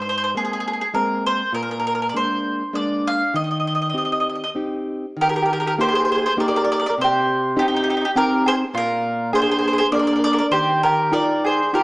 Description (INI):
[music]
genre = italian folk, Italian serenade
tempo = 100 BPM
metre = 3/4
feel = rubato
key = Eb major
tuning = A4 = 439 Hz
[part]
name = bowl-back mandolin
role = melody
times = 0.0-11.8 s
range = G4 to F5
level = -21 LUFS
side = equal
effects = none
[part]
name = nylon-string guitar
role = accompaniment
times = 0.0-11.8 s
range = Ab2 to G5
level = -23 LUFS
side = equal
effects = none
[part]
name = mandolin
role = second line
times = 5.2-11.8 s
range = Eb4 to Bb4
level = -22 LUFS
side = right 1 dB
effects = none
[sound]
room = wet recital hall reverb, RT60 1.5 s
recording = small speaker sound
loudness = -18 LUFS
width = side -24 dB against mid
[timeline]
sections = 0.0-5.2 A section; 5.2-11.8 A section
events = none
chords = 0.0 Abadd9; 1.5 Bb7; 3.3 Eb6; 5.2 Eb; 7.0 Cm; 8.8 Bb7; 10.5 Ebadd9